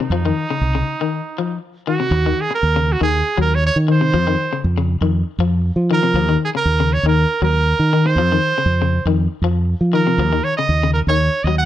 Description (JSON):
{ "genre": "afrobeat", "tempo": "119 BPM", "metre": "4/4", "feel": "straight", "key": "Eb dorian", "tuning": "A4 = 440 Hz", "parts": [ { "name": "bright trumpet", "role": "melody", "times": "0.0-11.6 s", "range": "Eb4 to Gb5", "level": "-19 LUFS", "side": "right 4 dB", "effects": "none" }, { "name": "electric guitar at the edge of break-up", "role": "arpeggios", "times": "0.0-11.7 s", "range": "C3 to Gb3", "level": "-22 LUFS", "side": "left 8 dB", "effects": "spring reverb" }, { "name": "fingered electric bass", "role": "bass", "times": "0.1-11.7 s", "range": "C2 to F3", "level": "-17 LUFS", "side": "right 1 dB", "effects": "none" } ], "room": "studio ambience", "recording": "nothing above 10.7 kHz", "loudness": "-15 LUFS", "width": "side -12 dB against mid", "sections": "0.0-2.1 A section; 2.1-11.7 B section", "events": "break 1.1-2.1", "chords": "0.1 F5; 2.1 Ebm; 4.1 F5; 6.2 Eb7(no3); 8.2 F5; 10.2 Ebm7" }